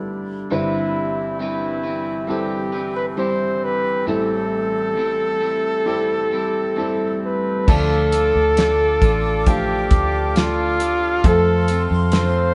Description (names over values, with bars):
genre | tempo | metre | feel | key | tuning
pop ballad | 67 BPM | 4/4 | straight | unclear | A4 = 439 Hz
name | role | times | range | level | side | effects
warm upright piano | accompaniment | 0.0-12.5 s | G1 to B4 | -29 LUFS | equal | none
warm woodwind section | sustained chords | 0.0-12.5 s | G2 to D6 | -30 LUFS | equal | none
warm flugelhorn | melody | 0.5-12.5 s | E4 to C5 | -23 LUFS | equal | none
electric guitar at the edge of break-up | arpeggios | 0.5-12.5 s | A2 to B4 | -30 LUFS | equal | none
vintage muted fingered electric bass | bass | 7.7-12.5 s | A1 to F2 | -24 LUFS | equal | none
damped 70s drum kit | drums | 7.7-12.3 s | crash cymbal, hi-hat, kick drum, snare drum | -20 LUFS | equal | none
room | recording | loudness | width
moderate studio reverb, RT60 0.6 s | band playing live in one room, nothing above 10.7 kHz | -20 LUFS | mono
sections
0.0-7.7 A section; 7.7-12.5 B section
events
none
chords
0.0 Gadd9; 0.5 Cmaj7/G; 4.1 Am7; 7.7 Dm; 11.2 F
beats
| 0.51 1.40 2.28 3.17 | 4.06 4.96 5.86 6.77 | 7.68 8.57 9.46 10.36 | 11.24 12.13